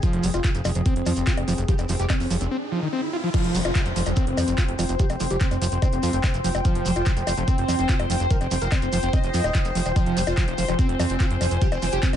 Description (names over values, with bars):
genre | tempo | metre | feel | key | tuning
psychedelic trance | 145 BPM | 4/4 | straight | F minor | A4 = 439 Hz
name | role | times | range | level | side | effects
wide unison lead | melody | 0.0-12.2 s | F3 to Eb5 | -29 LUFS | equal | phaser, sidechain pumping, tape echo
bubbling stepped-filter texture | sustained chords | 0.0-12.2 s | Ab4 to C5 | -33 LUFS | left 3 dB | chorus, built-in reverb, vintage 12-bit sampler grit, sidechain pumping
overdriven acid bass | riff | 0.0-12.1 s | Eb3 to F4 | -30 LUFS | right 2 dB | distortion, auto-pan, sidechain pumping, ping-pong delay
drum and bass drum kit | drums | 0.0-12.2 s | bongos, crash cymbal, handclaps, hi-hat | -31 LUFS | left 3 dB | overdrive
electronic kick drum | drums | 0.0-12.1 s | none | -22 LUFS | equal | overdrive
shekere | percussion | 0.0-12.2 s | none | -37 LUFS | right 3 dB | none
riser and downlifter | sound effects | 1.5-6.7 s | none | -33 LUFS | right 1 dB | none
ethereal airy pad | texture | 0.0-12.2 s | F4 to Ab5 | -32 LUFS | left 1 dB | ensemble chorus, built-in reverb, sidechain pumping
fat analog bass | bass | 0.1-12.2 s | Eb1 to F2 | -26 LUFS | equal | none
room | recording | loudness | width
light reverb | nothing above 10.7 kHz | -20 LUFS | side -10 dB against mid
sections
0.0-3.3 A section; 3.3-12.2 B section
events
riser 1.5-3.3; break 2.5-3.3; drop 3.3-12.2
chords
0.0 F5